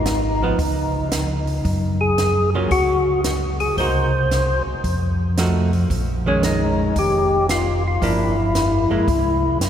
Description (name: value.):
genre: soul jazz organ trio.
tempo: 113 BPM.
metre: 4/4.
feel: swing 67% on 8ths.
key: unclear.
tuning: A4 = 442 Hz.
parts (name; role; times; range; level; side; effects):
percussive tonewheel organ; melody; 0.0-9.6 s; Db4 to C5; -21 LUFS; left 2 dB; slow rotary speaker, overdrive.
mellow tonewheel organ; bass; 0.0-9.7 s; F1 to Gb2; -21 LUFS; equal; chorus vibrato, slow rotary speaker.
compact cocktail drum kit; drums; 0.1-9.7 s; hi-hat, kick drum, snare drum; -27 LUFS; right 1 dB; none.
archtop guitar, miked and amplified; accompaniment; 0.4-9.1 s; Eb3 to Gb4; -25 LUFS; right 2 dB; none.
room: wet cathedral reverb, RT60 5.5 s.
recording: recorded in a church or concert hall.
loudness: -17 LUFS.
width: side -9 dB against mid.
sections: 0.0-9.7 A section.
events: none.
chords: 0.0 Abm; 0.6 Dbsus2; 1.6 Gb5; 3.8 Cm7b5; 4.8 F7b9; 5.9 Bbm7; 8.0 Gm7; 9.1 C.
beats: 0.06 0.59 1.12 | 1.65 2.18 2.71 3.24 | 3.77 4.30 4.83 5.37 | 5.90 6.43 6.96 7.49 | 8.02 8.55 9.09 9.62.